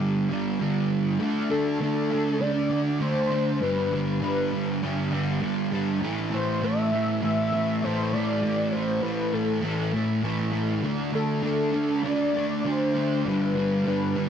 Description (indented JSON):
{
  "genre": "rock",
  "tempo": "100 BPM",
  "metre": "4/4",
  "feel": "straight",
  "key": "G major",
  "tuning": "A4 = 440 Hz",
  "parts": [
    { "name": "warm velvety synth lead", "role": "melody", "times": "0.0-14.3 s", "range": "G4 to E5", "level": "-29 LUFS", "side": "left 2 dB", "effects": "chorus, phaser, slapback echo" },
    { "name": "fuzz guitar", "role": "riff", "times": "0.0-14.3 s", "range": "G2 to D4", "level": "-24 LUFS", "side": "right 1 dB", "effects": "distortion, wide subtle chorus" }
  ],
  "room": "moderate plate reverb, RT60 2.9 s",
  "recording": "dark, warm production",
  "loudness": "-23 LUFS",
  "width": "side -8 dB against mid",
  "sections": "0.0-1.2 A section; 1.2-14.3 B section",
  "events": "none",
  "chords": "0.0 G5; 1.2 D5; 3.6 G; 6.0 A5; 10.8 D5; 13.2 G"
}